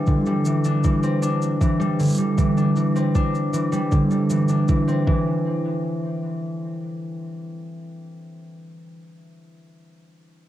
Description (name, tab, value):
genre	folktronica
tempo	78 BPM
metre	4/4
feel	straight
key	unclear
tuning	A4 = 441 Hz
part	concert harp	arpeggios	0.0-9.0 s	D3 to D4	-20 LUFS	equal	cassette tape, tape echo
part	electronic kick drum	drums	0.1-5.2 s	none	-21 LUFS	equal	cassette tape
part	shaker	drums	0.1-5.0 s	none	-39 LUFS	right 2 dB	cassette tape
room	moderate small room reverb, RT60 0.5 s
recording	home recording on cassette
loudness	-19 LUFS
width	side -13 dB against mid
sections	0.0-5.5 A section; 5.5-8.5 B section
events	none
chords	0.0 Cadd9; 5.1 N.C.